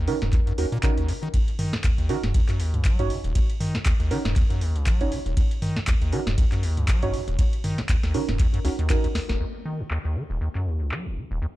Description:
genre	acid house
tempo	119 BPM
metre	4/4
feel	swing 56% on 16ths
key	Eb minor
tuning	A4 = 443 Hz
part	acid bass, square	riff	0.0-11.5 s	Eb1 to Gb3	-26 LUFS	equal	none
part	deep mellow chord stab	stabs	0.1-9.0 s	Db4 to Db5	-30 LUFS	right 3 dB	chorus, ping-pong delay
part	booming analog drum machine	drums	0.1-11.0 s	crash cymbal, handclaps, hi-hat, ride cymbal, snare drum, toms	-31 LUFS	equal	low-pass filter on hats, small room ambience, low-pass filter on snare, low-pass filter on toms, low-pass filter on cymbals
part	electronic kick drum	drums	0.3-9.4 s	none	-23 LUFS	equal	small room ambience
room	digital ambience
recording	dark, warm production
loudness	-21 LUFS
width	side -16 dB against mid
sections	0.0-9.4 A section; 9.4-11.6 B section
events	drop 0.0-9.4; drum fill 9.2; band accent 9.3; filter sweep on drum 9.4-11.6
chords	0.0 Ebm7; 9.4 Ebm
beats	0.33 0.83 | 1.34 1.84 2.35 2.85 | 3.35 3.86 4.36 4.87 | 5.37 5.87 6.38 6.88 | 7.39 7.89 8.39 8.90 | 9.40 9.91 10.41 10.92 | 11.42

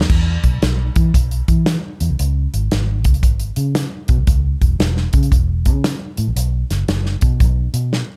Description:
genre	uptempo 1960s-style soul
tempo	115 BPM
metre	4/4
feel	swing 65% on 8ths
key	E major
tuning	A4 = 440 Hz
part	vintage muted fingered electric bass	bass	0.0-8.0 s	E1 to E3	-20 LUFS	equal	none
part	natural country drum kit	drums	0.0-8.1 s	crash cymbal, hi-hat, kick drum, snare drum	-19 LUFS	equal	none
room	little or no reverb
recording	none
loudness	-17 LUFS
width	mono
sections	0.0-8.2 A section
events	drum fill 7.9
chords	none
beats	| 0.10 0.62 1.14 1.67 | 2.19 2.71 3.24 3.76 | 4.28 4.80 5.32 5.85 | 6.37 6.89 7.41 7.93

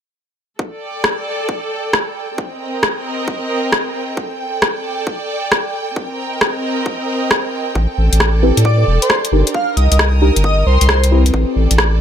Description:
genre	UK garage, two-step garage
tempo	134 BPM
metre	4/4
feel	swing 66% on 16ths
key	A minor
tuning	A4 = 442 Hz
part	electronic kick drum	drums	0.6-11.9 s	none	-25 LUFS	equal	high-pass filter on kick, high-pass filter on room
part	rich symphonic string section	texture	0.6-12.0 s	C4 to Eb6	-22 LUFS	right 1 dB	sidechain pumping
part	house drum kit	drums	1.0-11.9 s	hi-hat, rim click	-16 LUFS	left 1 dB	none
part	saturated sub bass	bass	7.8-12.0 s	E1 to A2	-13 LUFS	equal	sidechain pumping
part	deep mellow chord stab	stabs	8.4-12.0 s	C4 to B4	-19 LUFS	left 1 dB	chorus, ping-pong delay
part	airy dreamy lead	melody	8.7-11.0 s	C5 to F5	-20 LUFS	right 1 dB	chorus, cassette tape, ping-pong delay
room	light reverb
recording	none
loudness	-14 LUFS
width	side -9 dB against mid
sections	0.6-12.0 A section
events	none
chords	0.6 A7sus4; 2.4 Cm7; 4.2 Am7; 6.0 Cm7; 7.8 Am7; 9.5 Cm7; 11.3 Am7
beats	| 0.59 1.04 1.49 1.94 | 2.38 2.83 3.28 3.73 | 4.17 4.62 5.07 5.52 | 5.96 6.41 6.86 7.31 | 7.76 8.20 8.65 9.10 | 9.55 9.99 10.44 10.89 | 11.34 11.79

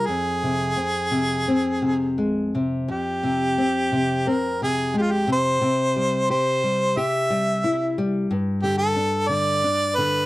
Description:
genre	fado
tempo	89 BPM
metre	4/4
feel	rubato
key	F minor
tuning	A4 = 441 Hz
part	clear harmonica	melody	0.0-10.3 s	F4 to E5	-22 LUFS	right 1 dB	slapback echo
part	nylon-string guitar	accompaniment	0.0-10.3 s	F2 to G4	-23 LUFS	left 1 dB	none
room	moderate booth ambience, RT60 0.2 s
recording	dry, close 1970s-style studio recording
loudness	-20 LUFS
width	side -18 dB against mid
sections	0.0-2.9 A section; 2.9-10.3 A section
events	none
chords	0.1 Fm; 5.6 C; 8.3 G5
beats	| 0.07 0.76 1.46 2.17 | 2.88 3.58 4.26 4.93 | 5.61 6.28 6.96 7.63 | 8.29 8.96 9.62

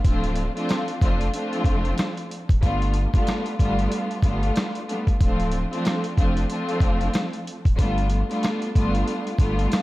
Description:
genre	hip hop, boom-bap hip-hop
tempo	93 BPM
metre	4/4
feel	swing 58% on 16ths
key	D dorian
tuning	A4 = 440 Hz
part	warm studio string section	accompaniment	0.0-9.8 s	F3 to F4	-25 LUFS	equal	cassette tape, high-pass filter, low-pass filter
part	warm sub bass	bass	0.0-9.7 s	D1 to G1	-25 LUFS	equal	none
part	dusty soul sampler-style drum kit	drums	0.0-9.8 s	hi-hat, kick drum, rim click, snare drum	-22 LUFS	equal	none
room	digital ambience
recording	dark, warm production, vinyl crackle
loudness	-20 LUFS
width	side -18 dB against mid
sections	0.0-9.8 A section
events	none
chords	0.0 Dm7; 2.6 G9; 5.2 Dm7; 7.8 G9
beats	| 0.04 0.69 1.34 1.98 | 2.63 3.27 3.92 4.56 | 5.21 5.85 6.50 7.14 | 7.79 8.43 9.08 9.72

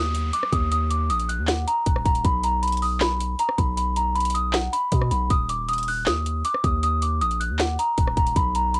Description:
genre	hip hop, trap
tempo	157 BPM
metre	4/4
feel	half-time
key	Eb harmonic minor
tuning	A4 = 440 Hz
part	celesta	melody	0.0-8.8 s	Gb5 to Gb6	-26 LUFS	equal	cassette tape
part	long sustained 808-style bass	bass	0.0-8.8 s	Eb1 to B2	-28 LUFS	equal	none
part	downlifter	sound effects	0.0-2.2 s	none	-46 LUFS	equal	none
part	trap drum kit	drums	0.1-8.8 s	handclaps, hi-hat, kick drum, rim click, snare drum	-28 LUFS	equal	cassette tape
room	light reverb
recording	home recording on cassette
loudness	-23 LUFS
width	mono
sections	0.0-8.8 A section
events	none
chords	0.0 Eb5; 2.2 N.C.; 5.3 Eb5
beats	0.34 | 0.72 1.10 1.48 1.86 | 2.25 2.63 3.01 3.39 | 3.77 4.16 4.54 4.92 | 5.30 5.68 6.07 6.45 | 6.83 7.21 7.60 7.98 | 8.36 8.74

